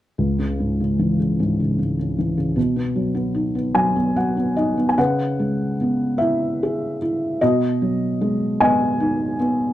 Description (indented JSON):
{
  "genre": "classical, lyrical solo piano",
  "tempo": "50 BPM (dotted quarters)",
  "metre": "6/8",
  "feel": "rubato",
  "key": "C# minor",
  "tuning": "A4 = 440 Hz",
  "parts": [
    { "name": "felt-muted upright piano", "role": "solo", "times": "0.2-9.7 s", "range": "C#2 to G#5", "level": "-18 LUFS", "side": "equal", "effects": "none" }
  ],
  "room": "light reverb",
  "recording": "dark, warm production",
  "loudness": "-18 LUFS",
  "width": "side -13 dB against mid",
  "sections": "0.2-5.0 A section; 5.0-9.7 B section",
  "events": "felt piano fill 3.8-5.0",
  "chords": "0.2 C#m; 2.6 G#m7/B; 5.0 C#m7; 7.4 G#m7/B"
}